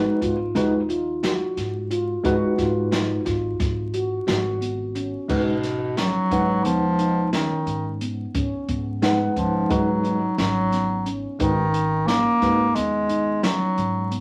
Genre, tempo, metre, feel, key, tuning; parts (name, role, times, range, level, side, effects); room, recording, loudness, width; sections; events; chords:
progressive instrumental, band music in an uneven meter; 177 BPM (eighths); 9/8; straight; G# dorian; A4 = 443 Hz
tine electric piano; accompaniment; 0.0-12.7 s; G#3 to F#5; -26 LUFS; equal; overdrive
handpan; arpeggios; 0.0-14.2 s; B3 to F#4; -29 LUFS; equal
upright bass; bass; 0.0-14.2 s; G#1 to G#2; -33 LUFS; equal
open jazz drum kit; drums; 0.2-14.2 s; crash cymbal, hi-hat, kick drum, snare drum; -31 LUFS; equal
clear bass clarinet; melody; 5.3-14.2 s; B2 to A#3; -24 LUFS; equal
wet small room reverb, RT60 0.5 s; vinyl crackle; -23 LUFS; mono
0.0-5.3 A section; 5.3-14.2 B section
0.0 G#m7